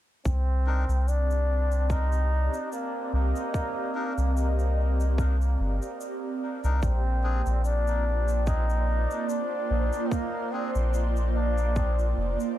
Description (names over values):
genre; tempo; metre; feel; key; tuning
ambient dub; 73 BPM; 4/4; swing 55% on 16ths; C minor; A4 = 439 Hz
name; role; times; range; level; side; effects
trombone with straight mute; melody; 0.3-12.5 s; Bb3 to Eb4; -32 LUFS; left 1 dB; dub echo
airy breathy pad; sustained chords; 0.3-12.6 s; Bb3 to Eb5; -33 LUFS; right 3 dB; chorus, phaser
soft dub sub bass; bass; 0.3-12.4 s; F1 to C2; -24 LUFS; equal; tube saturation
electronic kick drum; drums; 0.3-11.9 s; none; -31 LUFS; equal; overdrive
shaker; drums; 0.3-12.5 s; none; -51 LUFS; left 4 dB; overdrive
melodica; stabs; 0.7-10.7 s; C4 to Bb4; -41 LUFS; left 4 dB; dub echo
room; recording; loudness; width
light reverb, digital ambience; none; -24 LUFS; side -13 dB against mid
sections
0.3-12.6 A section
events
none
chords
0.3 Cm9; 6.8 Bbadd9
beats
| 0.26 1.08 1.90 2.72 | 3.54 4.37 5.19 6.01 | 6.83 7.65 8.48 9.30 | 10.12 10.94 11.76